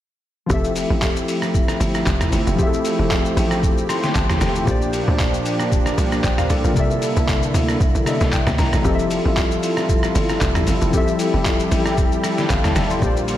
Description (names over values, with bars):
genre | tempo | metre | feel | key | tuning
amapiano | 115 BPM | 4/4 | swing 55% on 16ths | F major | A4 = 440 Hz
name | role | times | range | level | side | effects
warm analog keys | accompaniment | 0.5-13.4 s | Bb2 to C6 | -22 LUFS | left 3 dB | chorus
warm analog pad | sustained chords | 0.5-13.4 s | D3 to A4 | -23 LUFS | right 1 dB | chorus, sidechain pumping
tight log drum bass | bass | 0.5-13.4 s | F1 to D2 | -22 LUFS | equal | none
trip hop sampler-style drum kit | drums | 0.5-13.4 s | handclaps, hi-hat, kick drum, rim click, shaker, snare drum, toms | -21 LUFS | equal | none
room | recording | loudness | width
moderate lush hall reverb, RT60 2.5 s | dreamy mix soaked in reverb | -16 LUFS | side -12 dB against mid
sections
0.5-13.4 A section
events
drop 0.5-13.4; synth keys fill 3.6-4.7, 7.8-8.8, 12.2-13.0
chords
0.5 Fmaj9; 4.7 Bb6; 6.8 C13; 8.8 Fmaj9